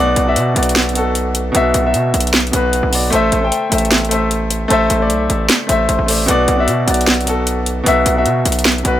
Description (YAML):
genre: hip hop, trap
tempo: 152 BPM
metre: 4/4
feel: half-time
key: B phrygian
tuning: A4 = 441 Hz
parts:
  - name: warm baby grand piano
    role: accompaniment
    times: 0.0-9.0 s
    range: B2 to G5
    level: -15 LUFS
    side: left 1 dB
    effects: none
  - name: distorted 808-style bass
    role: bass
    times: 0.0-9.0 s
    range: A1 to B2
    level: -19 LUFS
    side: right 1 dB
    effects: distortion
  - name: trap drum kit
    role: drums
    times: 0.2-8.9 s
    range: hi-hat, snare drum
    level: -16 LUFS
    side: equal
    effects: none
room: little or no reverb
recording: none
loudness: -12 LUFS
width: side -12 dB against mid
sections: 0.0-9.0 A section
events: none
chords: 0.0 Bm; 3.1 Am; 6.3 Bm